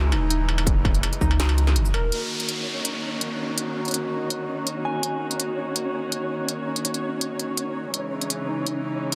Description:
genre	half-time drum and bass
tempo	165 BPM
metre	4/4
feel	half-time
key	Eb phrygian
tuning	A4 = 439 Hz
part	warm chamber string section	sustained chords	0.0-9.2 s	Db3 to Gb4	-32 LUFS	equal	sidechain pumping, low-pass filter
part	saturated sub bass	bass	0.0-2.1 s	Eb1 to Db2	-24 LUFS	equal	none
part	warbly dusty pluck	arpeggios	0.1-2.1, 8.5-9.2 s	Eb4 to Bb4	-35 LUFS	equal	analog chorus, vintage 12-bit sampler grit, delay
part	industrial drum kit	drums	0.1-9.2 s	hi-hat, shaker, snare drum, struck metal	-30 LUFS	equal	none
part	electronic kick drum	drums	0.7-1.3 s	none	-25 LUFS	equal	distortion
part	downlifter	sound effects	2.1-5.0 s	none	-34 LUFS	equal	none
part	flickering grainy texture	texture	2.4-9.2 s	Db4 to Db5	-34 LUFS	equal	built-in reverb
part	soft synth bell	melody	4.8-5.2 s	Ab5	-38 LUFS	equal	chorus, phaser, digital delay
room	light reverb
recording	dense, heavily limited modern master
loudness	-25 LUFS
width	mono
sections	0.0-2.1 A section; 2.1-9.2 B section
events	drop 0.0-2.1; filter sweep on string section 2.1-9.2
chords	0.0 Dbm; 2.1 Ebm; 7.9 Dbm

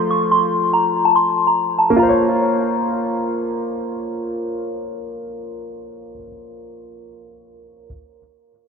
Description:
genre	hip hop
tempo	143 BPM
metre	4/4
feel	half-time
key	Bb harmonic minor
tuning	A4 = 440 Hz
part	soft synth bell	melody	0.0-3.2 s	A5 to Db6	-17 LUFS	left 2 dB	chorus, phaser, low-pass filter, dub echo
part	warm concert grand piano	accompaniment	0.0-7.9 s	F3 to Db5	-21 LUFS	equal	low-pass filter, dub echo
room	light reverb, small room ambience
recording	echo-heavy mix, low-pass filter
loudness	-16 LUFS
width	side -6 dB against mid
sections	0.0-2.0 A section; 2.0-5.4 B section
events	none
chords	0.0 F; 2.0 Bbmadd9

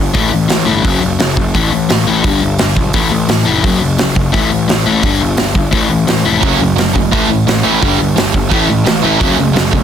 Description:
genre	punk rock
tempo	172 BPM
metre	4/4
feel	straight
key	A mixolydian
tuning	A4 = 437 Hz
part	overdriven semi-hollow guitar	riff	0.0-9.8 s	F#2 to A3	-13 LUFS	left 5 dB	none
part	fuzz picked electric bass	bass	0.0-9.8 s	F1 to B1	-18 LUFS	right 1 dB	overdrive
part	big rock drum kit	drums	0.1-9.8 s	hi-hat, kick drum, snare drum	-15 LUFS	right 2 dB	none
part	distorted electric guitar	riff	6.4-9.8 s	G2 to C#4	-15 LUFS	right 15 dB	overdrive
room	light reverb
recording	dense, heavily limited modern master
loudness	-10 LUFS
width	side -9 dB against mid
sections	0.0-9.8 A section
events	none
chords	0.1 A5; 0.8 F#5; 1.5 A5; 2.2 G; 2.9 A5; 3.6 F#5; 4.3 A5; 5.0 G5; 5.7 A5; 6.4 F#m; 7.1 A5; 7.8 G5; 8.5 A5; 9.2 F#m

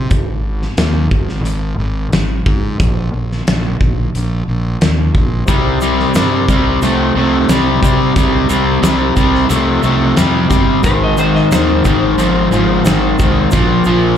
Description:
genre	classic rock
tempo	90 BPM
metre	4/4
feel	straight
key	C minor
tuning	A4 = 441 Hz
part	fuzz fingered electric bass	bass	0.0-14.1 s	G1 to C3	-17 LUFS	equal	overdrive
part	big rock drum kit	drums	0.1-13.7 s	hi-hat, kick drum, snare drum	-17 LUFS	equal	none
part	mellow tonewheel organ	sustained chords	5.5-14.2 s	Bb3 to C5	-26 LUFS	right 2 dB	none
part	crunchy overdriven guitar	riff	5.5-14.2 s	Ab2 to A3	-15 LUFS	left 10 dB	slapback echo
part	overdriven semi-hollow guitar	riff	5.5-14.2 s	Ab2 to A3	-16 LUFS	right 12 dB	none
part	egg shaker	percussion	5.5-14.0 s	none	-31 LUFS	right 1 dB	none
part	electric slide guitar	second line	10.9-13.5 s	C5 to Eb5	-21 LUFS	left 2 dB	tape echo, slapback echo
room	little or no reverb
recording	live gig heard through the venue's PA, club reverb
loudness	-11 LUFS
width	side -9 dB against mid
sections	0.0-14.2 A section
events	none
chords	0.1 Ab5; 2.8 N.C.; 5.5 Cm; 10.8 Abadd9; 13.5 Bb

